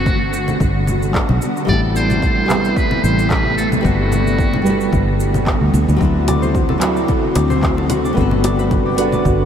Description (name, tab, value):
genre	sunset chillout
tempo	111 BPM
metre	4/4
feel	swing 54% on 16ths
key	G major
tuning	A4 = 440 Hz
part	trumpet with metal mute	melody	0.0-4.9 s	F#4 to D5	-24 LUFS	equal	analog delay
part	shimmering ambient pad	sustained chords	0.0-9.5 s	C3 to F#4	-22 LUFS	left 1 dB	chorus, built-in reverb
part	fingered electric bass	bass	0.0-9.5 s	G1 to D2	-19 LUFS	equal	none
part	deep house drum kit	drums	0.1-9.4 s	cabasa, congas, handclaps, hi-hat	-23 LUFS	left 1 dB	none
part	electronic kick drum	drums	0.1-9.4 s	none	-20 LUFS	equal	none
part	nylon-string guitar	accompaniment	1.6-9.5 s	F#3 to F#5	-20 LUFS	moving between left 4 dB and right 4 dB	auto-pan, analog delay
part	concert harp	arpeggios	6.3-9.5 s	F#4 to D5	-23 LUFS	left 3 dB	analog delay
part	bongos	percussion	6.3-8.6 s	none	barely audible	none	none
room	moderate huge ambient reverb, RT60 8.0 s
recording	dreamy mix soaked in reverb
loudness	-14 LUFS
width	side -8 dB against mid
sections	0.0-9.5 A section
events	none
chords	0.0 Gmaj7; 1.4 Am7; 3.8 Gmaj7; 6.0 D7; 8.2 Gmaj7